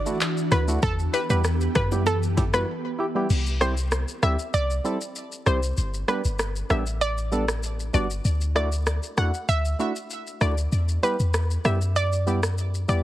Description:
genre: dancehall.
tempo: 97 BPM.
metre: 4/4.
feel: straight.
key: unclear.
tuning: A4 = 440 Hz.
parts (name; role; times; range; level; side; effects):
analog pluck; melody; 0.0-13.0 s; A4 to F#5; -28 LUFS; equal; chorus, digital delay.
ethereal airy pad; sustained chords; 0.0-3.3 s; E3 to G4; -31 LUFS; right 1 dB; ensemble chorus, built-in reverb, sidechain pumping.
percussive organ stab; accompaniment; 0.1-13.0 s; G3 to A4; -30 LUFS; right 2 dB; chorus.
deep house drum kit; drums; 0.1-13.0 s; crash cymbal, handclaps, hi-hat, kick drum, rim click, shaker; -29 LUFS; equal; none.
clean 808-style bass; bass; 0.5-13.0 s; G1 to F#2; -24 LUFS; equal; none.
bongos; percussion; 0.5-2.5 s; none; -34 LUFS; left 5 dB; none.
room: light reverb.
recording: heavily compressed radio sound, multiband compression.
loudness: -22 LUFS.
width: side -14 dB against mid.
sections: 0.0-3.3 A section; 3.3-13.0 B section.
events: break 2.7-3.3; kick muted 3.3-13.0.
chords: 0.0 Dadd9; 0.8 Em; 3.3 C; 5.8 G; 8.2 Dadd9; 10.7 Em.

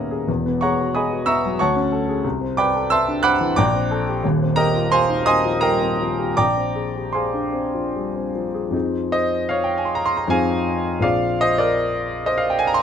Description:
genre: classical, impressionist solo piano.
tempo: 74-93 BPM.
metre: 3/4.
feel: rubato.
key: F minor from 4.2 s.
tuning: A4 = 440 Hz.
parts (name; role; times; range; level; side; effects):
warm grand piano; solo; 0.0-12.8 s; D#1 to F#6; -18 LUFS; equal; none.
room: light reverb.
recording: close, detailed microphones.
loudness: -18 LUFS.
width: side -8 dB against mid.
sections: 0.0-8.7 A section; 8.7-12.8 B section.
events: none.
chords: 0.3 Emaj9; 1.6 Dmaj7; 2.2 Cmaj9; 3.6 A#maj9; 4.2 Eb69; 6.4 Bb9; 8.7 Fm7; 11.0 Bb9.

